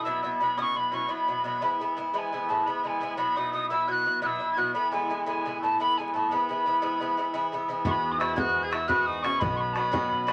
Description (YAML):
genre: celtic folk, Celtic slip jig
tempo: 115 BPM (dotted quarters)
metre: 9/8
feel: straight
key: E major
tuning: A4 = 435 Hz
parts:
  - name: mellow tin whistle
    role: melody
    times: 0.0-10.3 s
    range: G#5 to G#6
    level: -30 LUFS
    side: equal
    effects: none
  - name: warm cor anglais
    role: second line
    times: 0.0-10.3 s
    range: G#3 to G#4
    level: -38 LUFS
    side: equal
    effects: none
  - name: Irish bouzouki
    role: accompaniment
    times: 0.0-10.3 s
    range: G#2 to F#4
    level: -32 LUFS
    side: equal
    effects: none
  - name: upright bass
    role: bass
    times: 7.8-10.3 s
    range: B1 to E2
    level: -41 LUFS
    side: equal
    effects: none
  - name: bodhran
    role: percussion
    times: 7.8-10.3 s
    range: none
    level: -35 LUFS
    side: equal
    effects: none
  - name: rich fiddle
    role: second line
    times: 7.9-10.3 s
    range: B3 to G#4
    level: -42 LUFS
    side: equal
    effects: none
room: moderate studio ambience, RT60 0.5 s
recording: vinyl crackle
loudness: -27 LUFS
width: mono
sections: 0.0-7.9 A section; 7.9-10.3 B section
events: none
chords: 0.1 Bsus4; 1.6 E; 3.2 Bsus4; 4.7 Asus2; 6.3 E; 7.9 Eadd9; 9.4 Badd9